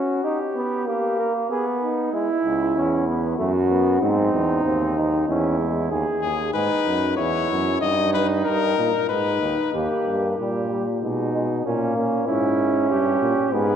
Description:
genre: classical, imitative canzona for brass ensemble.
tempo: 95 BPM.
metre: 3/4.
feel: straight.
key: unclear.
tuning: A4 = 438 Hz.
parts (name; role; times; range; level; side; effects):
mellow flugelhorn; second line; 0.0-13.8 s; C#4 to A#4; -24 LUFS; right 2 dB; none.
clear trombone; accompaniment; 0.0-5.9, 9.7-13.8 s; G3 to D#4; -24 LUFS; equal; none.
warm euphonium; bass; 2.4-13.8 s; C#2 to B2; -24 LUFS; right 1 dB; none.
bright trumpet; melody; 6.2-9.7, 13.5-13.8 s; G#4 to D#5; -24 LUFS; left 8 dB; none.
room: wet church reverb, RT60 2.8 s.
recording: dark, warm production.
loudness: -20 LUFS.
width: side -8 dB against mid.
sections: 0.0-9.7 A section; 9.7-13.8 B section.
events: none.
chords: 0.2 D# (rootless); 1.5 G#m/B; 2.1 C#m; 3.4 F#madd11; 4.0 G#; 5.3 C#m/E; 5.9 G#m/D#; 7.2 C#madd11/E; 7.8 D#/G; 9.1 G#m; 9.7 D# (rootless); 11.0 G#m/B; 11.6 A#dim; 12.9 Gdim.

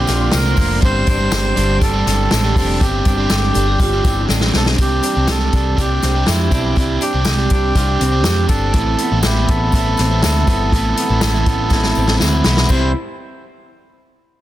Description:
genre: jangly indie pop.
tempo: 121 BPM.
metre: 4/4.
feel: straight.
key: C major.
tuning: A4 = 441 Hz.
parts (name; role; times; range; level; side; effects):
melodica; melody; 0.0-12.9 s; E4 to C5; -21 LUFS; right 1 dB; digital delay.
overdriven electric guitar; accompaniment; 0.0-12.9 s; G2 to G4; -22 LUFS; right 4 dB; none.
warm studio string section; sustained chords; 0.0-4.8 s; G4 to C6; -32 LUFS; left 2 dB; none.
electric guitar through a small old amp; arpeggios; 0.0-12.9 s; G2 to G4; -23 LUFS; left 2 dB; spring reverb.
picked electric bass; bass; 0.0-12.9 s; F1 to F2; -18 LUFS; equal; none.
vintage drum kit; drums; 0.1-12.8 s; crash cymbal, hi-hat, kick drum, snare drum; -18 LUFS; equal; none.
tambourine; percussion; 0.1-12.9 s; none; -32 LUFS; left 7 dB; none.
vibraphone with hard mallets; second line; 3.3-4.8, 12.7-12.9 s; D4 to A4; -28 LUFS; left 3 dB; none.
room: small room ambience.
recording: dense, heavily limited modern master.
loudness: -13 LUFS.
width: side -14 dB against mid.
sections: 0.0-4.8 A section; 4.8-12.7 B section; 12.7-14.4 C section.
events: drum fill 4.3-4.8, 11.7-12.7.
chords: 0.0 Bbadd9; 0.8 Gsus4; 4.8 Csus2; 8.7 Amadd9; 12.7 C.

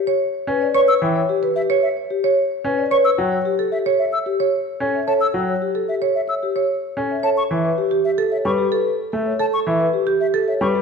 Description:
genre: classical, minimalist pattern music.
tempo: 111 BPM.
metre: 4/4.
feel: straight.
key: unclear.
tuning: A4 = 440 Hz.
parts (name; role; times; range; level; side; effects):
vibraphone with soft mallets; melody; 0.0-10.8 s; G4 to G5; -22 LUFS; left 6 dB; none.
marimba with medium hard mallets; arpeggios; 0.1-10.5 s; G4 to C#5; -21 LUFS; right 5 dB; none.
bright baby grand piano; accompaniment; 0.5-10.8 s; E3 to C#4; -23 LUFS; right 1 dB; none.
silver concert flute; arpeggios; 0.7-10.7 s; E5 to E6; -25 LUFS; left 3 dB; none.
room: moderate scoring stage reverb, RT60 1.5 s.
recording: dark, warm production.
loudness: -17 LUFS.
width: side -5 dB against mid.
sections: 0.0-10.8 A section.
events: none.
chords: 0.0 Em (rootless); 3.0 A7; 7.4 Gadd9.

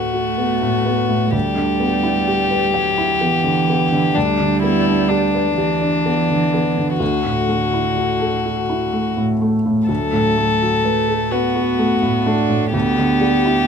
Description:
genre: neoclassical piano and strings.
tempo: 42 BPM (dotted quarters).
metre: 6/8.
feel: rubato.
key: unclear.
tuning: A4 = 441 Hz.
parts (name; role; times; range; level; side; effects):
warm violin; melody; 0.0-13.7 s; D4 to A4; -19 LUFS; left 6 dB; none.
warm cello; second line; 0.0-13.7 s; D3 to D4; -22 LUFS; right 6 dB; none.
felt-muted upright piano; accompaniment; 0.0-13.7 s; D2 to G5; -19 LUFS; right 1 dB; none.
room: light reverb.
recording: minimal, uncompressed stereo recording.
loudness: -15 LUFS.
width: side -6 dB against mid.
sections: 0.0-13.7 A section.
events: none.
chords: 0.0 Bm7/D; 1.3 Em7/D; 4.2 G/D; 7.0 Dadd9; 9.9 Bm7/D; 12.7 Em7/D.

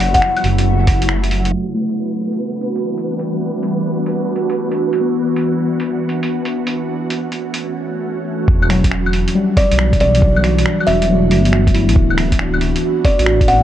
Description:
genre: future garage.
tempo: 138 BPM.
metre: 4/4.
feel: swing 66% on 16ths.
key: E minor.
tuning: A4 = 438 Hz.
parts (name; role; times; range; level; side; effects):
ethereal airy pad; sustained chords; 0.0-13.6 s; C#3 to F#4; -20 LUFS; right 3 dB; ensemble chorus, built-in reverb, phaser, sidechain pumping.
dark detuned saw bass; bass; 0.0-1.5, 8.5-13.6 s; D1 to B1; -17 LUFS; equal; sidechain pumping.
lo-fi sampler-style drum kit; drums; 0.0-13.6 s; claves, finger snaps, hi-hat; -22 LUFS; left 1 dB; low-pass filter on hats, low-pass filter on perc, low-pass filter on snare, low-pass filter on room.
flickering grainy texture; texture; 0.0-7.6 s; F#3 to B4; -28 LUFS; equal; built-in reverb.
buzzing kalimba; melody; 0.1-0.6, 9.6-13.6 s; D5 to F#5; -18 LUFS; left 1 dB; vintage 12-bit sampler grit, analog delay.
electronic kick drum; drums; 0.1-1.0, 8.5-13.5 s; none; -14 LUFS; equal; none.
muted felt-like synth keys; accompaniment; 1.7-13.6 s; F#3 to F#4; -20 LUFS; left 3 dB; chorus, sidechain pumping, analog delay.
room: light reverb.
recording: cassette tape, low-pass filter.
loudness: -14 LUFS.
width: side -11 dB against mid.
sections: 0.0-1.5 A section; 1.5-8.5 B section; 8.5-13.6 A section.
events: filter sweep 1.5-8.5.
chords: 0.0 F#m7; 1.5 Em9; 5.0 D69; 6.7 F#m7; 8.5 Em9; 12.0 D13.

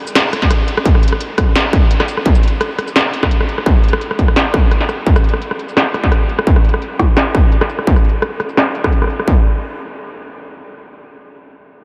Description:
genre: half-time drum and bass.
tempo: 171 BPM.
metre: 4/4.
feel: swing 53% on 16ths, half-time.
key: none.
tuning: none.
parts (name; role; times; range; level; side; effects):
industrial drum kit; drums; 0.1-9.3 s; hi-hat, rim click, shaker, snare drum; -19 LUFS; equal; low-pass filter on snare, small room ambience, low-pass filter on hats, low-pass filter on perc.
electronic kick drum; drums; 0.4-9.4 s; none; -14 LUFS; equal; distortion, small room ambience.
room: moderate huge ambient reverb, RT60 7.5 s.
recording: dreamy mix soaked in reverb.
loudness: -14 LUFS.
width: mono.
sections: 0.0-9.3 A section; 9.3-10.7 B section.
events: filter sweep on drum 0.0-9.3.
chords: none.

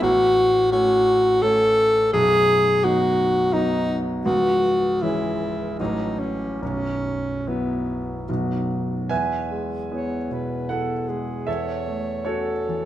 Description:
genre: classical, romantic duo for alto saxophone and grand piano.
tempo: 66-87 BPM.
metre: 3/4.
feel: rubato.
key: E major.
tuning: A4 = 439 Hz.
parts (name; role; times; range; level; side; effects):
clear alto saxophone; melody; 0.0-12.9 s; B3 to C#5; -20 LUFS; equal; none.
clear concert grand piano; accompaniment; 0.0-12.9 s; B0 to G#5; -25 LUFS; equal; none.
room: wet stone room reverb, RT60 1.1 s.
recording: none.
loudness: -19 LUFS.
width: side -13 dB against mid.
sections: 0.0-9.1 A section; 9.1-12.9 B section.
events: none.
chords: 0.0 F#m/A; 2.1 B; 4.2 C#m; 5.8 F#m/A; 6.6 Bsus4; 8.3 B; 9.1 E; 11.5 F#m7/E.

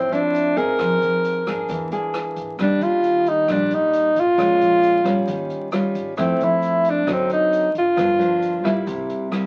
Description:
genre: bossa nova.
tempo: 134 BPM.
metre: 4/4.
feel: straight.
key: unclear.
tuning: A4 = 440 Hz.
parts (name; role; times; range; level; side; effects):
breathy tenor saxophone; melody; 0.0-8.8 s; C4 to Bb4; -20 LUFS; equal; none.
nylon-string guitar; accompaniment; 0.0-9.5 s; G2 to Ab4; -26 LUFS; equal; none.
upright bass; bass; 0.0-9.1 s; G1 to F2; -33 LUFS; equal; none.
open jazz drum kit; drums; 0.1-9.4 s; hi-hat, kick drum, rim click; -37 LUFS; equal; none.
egg shaker; percussion; 0.1-9.5 s; none; -59 LUFS; equal; none.
room: moderate studio reverb, RT60 0.7 s.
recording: very old 78 rpm record, vinyl crackle.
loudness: -20 LUFS.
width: mono.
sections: 0.0-9.5 A section.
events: none.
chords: 0.0 Dm9; 0.8 Fm7; 1.7 E7#11; 2.6 Ebmaj7; 4.4 Bbm7; 5.3 Eb9; 6.2 Fmaj7; 7.1 D7b9; 8.0 Gm7; 8.9 C7.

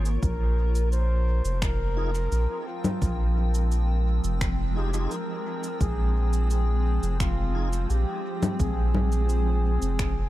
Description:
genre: ambient dub.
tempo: 86 BPM.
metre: 4/4.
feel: straight.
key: unclear.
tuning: A4 = 440 Hz.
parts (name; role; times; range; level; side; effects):
granular cloud pad; sustained chords; 0.0-10.3 s; F3 to G5; -33 LUFS; equal; built-in reverb.
soft dub sub bass; bass; 0.0-10.3 s; F1 to Bb1; -24 LUFS; equal; none.
electronic shaker, finger snaps and congas; drums; 0.1-10.1 s; none; -31 LUFS; left 1 dB; dub echo.
trumpet with bucket mute; melody; 0.2-10.3 s; F4 to C5; -34 LUFS; equal; dub echo.
electronic kick drum; drums; 0.2-10.1 s; none; -29 LUFS; equal; overdrive.
tonewheel organ; stabs; 2.0-7.7 s; Eb4 to Ab4; -42 LUFS; right 1 dB; chorus vibrato, slow rotary speaker, dub echo.
room: little or no reverb.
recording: none.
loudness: -23 LUFS.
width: side -15 dB against mid.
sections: 0.0-10.3 A section.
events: none.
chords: 0.2 Fm7.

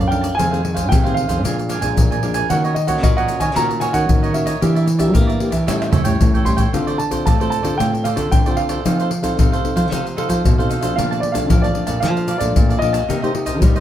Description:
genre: samba and choro.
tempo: 113 BPM.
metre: 4/4.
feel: straight.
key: Bb major.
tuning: A4 = 440 Hz.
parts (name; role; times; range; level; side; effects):
warm baby grand piano; melody; 0.0-13.8 s; D5 to C6; -23 LUFS; right 2 dB; none.
cavaquinho; accompaniment; 0.0-13.8 s; D4 to A5; -25 LUFS; right 5 dB; none.
nylon-string guitar; accompaniment; 0.0-13.8 s; F2 to A4; -24 LUFS; left 3 dB; none.
nylon-string guitar; bass; 0.0-13.8 s; F2 to Bb3; -21 LUFS; right 1 dB; none.
tube shaker, surdo, pandeiro and tamborim; percussion; 0.0-13.8 s; none; -18 LUFS; left 1 dB; none.
room: light reverb.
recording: close, detailed microphones.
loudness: -15 LUFS.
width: side -11 dB against mid.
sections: 0.0-13.8 A section.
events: drum fill 5.7-6.7.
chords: 0.4 Fm7; 1.4 Bb7; 2.5 Ebm7; 4.6 Em7b5; 5.7 A7; 6.7 Dm7; 8.9 F7; 11.0 Bbmaj7; 13.1 Cm7.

